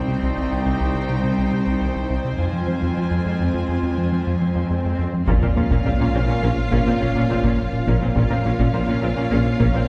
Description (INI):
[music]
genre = cinematic, hybrid orchestral and electronic film score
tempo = 104 BPM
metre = 5/4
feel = straight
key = Bb dorian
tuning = A4 = 441 Hz
[part]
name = rich symphonic violin section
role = second line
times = 0.0-9.9 s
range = F4 to Ab5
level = -35 LUFS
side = equal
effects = none
[part]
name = rich symphonic viola section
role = accompaniment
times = 0.0-9.8 s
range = C4 to F4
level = -33 LUFS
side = equal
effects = none
[part]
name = warbly tape-like pad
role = sustained chords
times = 0.0-9.9 s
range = G3 to C5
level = -31 LUFS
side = equal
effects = none
[part]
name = string-like resonator pluck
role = arpeggios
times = 0.0-9.8 s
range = C3 to Bb4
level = -34 LUFS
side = equal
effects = none
[part]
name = rubbery square bass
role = riff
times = 0.0-9.8 s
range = C2 to Bb3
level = -26 LUFS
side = equal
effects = none
[part]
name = rich symphonic cello section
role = bass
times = 0.0-9.8 s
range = C2 to Bb2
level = -28 LUFS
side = equal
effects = none
[part]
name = taiko ensemble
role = drums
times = 0.4-0.6, 5.3-9.9 s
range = none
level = -28 LUFS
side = equal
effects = none
[part]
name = swell and sub drop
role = sound effects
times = 4.2-8.2 s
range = none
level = -31 LUFS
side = equal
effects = none
[part]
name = warm symphonic violin section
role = melody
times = 5.3-9.9 s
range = F5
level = -33 LUFS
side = equal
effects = none
[part]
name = warm French horn section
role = sustained chords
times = 5.3-9.9 s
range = Db4 to F4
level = -35 LUFS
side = equal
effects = none
[part]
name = warm trombone section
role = sustained chords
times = 5.3-9.9 s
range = F3 to Bb3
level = -34 LUFS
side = equal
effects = none
[part]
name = mellow tuba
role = bass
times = 5.3-9.7 s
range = Bb1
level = -29 LUFS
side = equal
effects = none
[part]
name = rich symphonic double bass section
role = bass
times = 5.3-9.7 s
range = Bb1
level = -29 LUFS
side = equal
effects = none
[sound]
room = wet scoring stage reverb, RT60 1.7 s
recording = heard from further back in the room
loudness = -21 LUFS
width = mono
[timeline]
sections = 0.0-5.3 A section; 5.3-9.9 B section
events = build-up 0.0-5.3; swell 4.2-5.3; impact 5.3-8.2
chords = 0.0 Cm; 2.4 Fm; 5.3 Bbm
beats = 0.09 0.66 1.24 1.82 | 2.39 2.97 3.55 4.12 4.70 | 5.28 5.86 6.43 7.01 7.59 | 8.16 8.74 9.32